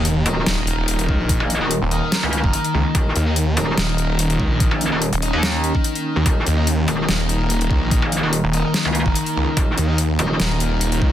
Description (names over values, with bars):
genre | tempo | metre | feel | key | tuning
heavy wobble dubstep | 145 BPM | 4/4 | swing 53% on 16ths, half-time | unclear | A4 = 441 Hz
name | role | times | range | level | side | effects
evolving wavetable pad | sustained chords | 0.0-11.1 s | Eb3 to Db5 | -25 LUFS | equal | phaser, built-in reverb, sidechain pumping
distorted electric guitar | stabs | 0.0-11.1 s | Eb4 to Eb5 | -26 LUFS | left 1 dB | distortion, tape echo
snarling distorted saw bass | bass | 0.0-11.1 s | Eb1 to Eb2 | -20 LUFS | equal | distortion, overdrive
impact | sound effects | 0.0-1.3 s | none | -31 LUFS | equal | none
dubstep drum kit | drums | 0.1-11.0 s | hi-hat, snare drum | -24 LUFS | left 1 dB | overdrive
metallic wobble bass | bass | 0.3-10.4 s | Eb1 to Eb2 | -20 LUFS | equal | chorus, overdrive
electronic kick drum | drums | 1.1-11.1 s | none | -19 LUFS | equal | overdrive
room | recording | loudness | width
light reverb | dense, heavily limited modern master | -17 LUFS | side -11 dB against mid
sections
0.0-11.1 A section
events
impact 0.0-1.3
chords
0.0 Eb5